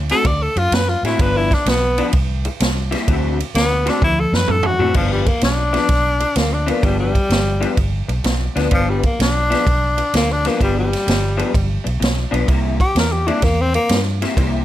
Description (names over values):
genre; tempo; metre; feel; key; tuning
electric blues shuffle; 127 BPM; 4/4; swing 67% on 8ths; G mixolydian; A4 = 440 Hz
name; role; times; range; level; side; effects
vintage muted fingered electric bass; bass; 0.0-14.6 s; G1 to A2; -20 LUFS; equal; none
clear tenor saxophone; melody; 0.1-14.0 s; F3 to D5; -19 LUFS; left 1 dB; plate reverb
electric guitar through a small old amp; riff; 0.1-14.6 s; G2 to F#4; -22 LUFS; left 3 dB; ensemble chorus
swinging big-band drum kit; drums; 0.1-14.5 s; crash cymbal, kick drum, ride cymbal, snare drum, toms; -20 LUFS; right 1 dB; none
room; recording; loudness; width
light reverb; none; -15 LUFS; side -13 dB against mid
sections
0.0-5.0 A section; 5.0-14.6 A section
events
tenor saxophone solo 0.0-5.0, 5.0-14.6; drum fill 4.0-5.0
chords
0.0 D7; 1.2 G7; 2.1 C7; 3.1 D7; 5.0 G7; 12.5 C7